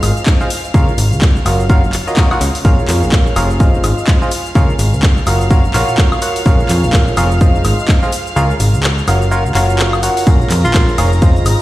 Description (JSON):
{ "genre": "piano house", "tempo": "126 BPM", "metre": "4/4", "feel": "swing 59% on 16ths", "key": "Bb minor", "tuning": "A4 = 440 Hz", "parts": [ { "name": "clear symphonic string section", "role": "sustained chords", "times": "0.0-11.6 s", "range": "F5 to Bb6", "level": "-27 LUFS", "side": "equal", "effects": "sidechain pumping" }, { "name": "barking FM electric piano", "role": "riff", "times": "0.0-11.6 s", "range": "F4 to Gb5", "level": "-18 LUFS", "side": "right 1 dB", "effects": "chorus, sidechain pumping, dub echo" }, { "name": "plucky analog bass", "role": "bass", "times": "0.0-11.6 s", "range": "F1 to F2", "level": "-15 LUFS", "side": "equal", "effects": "sidechain pumping" }, { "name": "house drum kit", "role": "drums", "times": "0.0-11.6 s", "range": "handclaps, hi-hat, ride cymbal, shaker, woodblock", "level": "-20 LUFS", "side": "left 1 dB", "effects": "overdrive, small room reverb" }, { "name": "electronic kick drum", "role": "drums", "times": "0.3-11.3 s", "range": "none", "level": "-11 LUFS", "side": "equal", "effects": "overdrive, small room reverb" }, { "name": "clear tenor saxophone", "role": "melody", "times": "10.6-11.0 s", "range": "F4", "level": "-20 LUFS", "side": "right 1 dB", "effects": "dub echo" } ], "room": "light reverb", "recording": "played on a big sound system in a bare room, stone room reverb", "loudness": "-10 LUFS", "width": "side -16 dB against mid", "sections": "0.0-11.6 A section", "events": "kick drops out 8.4-10.3", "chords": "0.0 Fm7; 0.7 Db6; 1.5 Gbmaj7; 2.6 Bbm7; 3.6 Fm7; 4.6 Db6; 5.3 Gbmaj7; 6.5 Bbm7; 7.4 Fm7; 8.4 Db6; 9.1 Gbmaj7; 10.3 Bbm7" }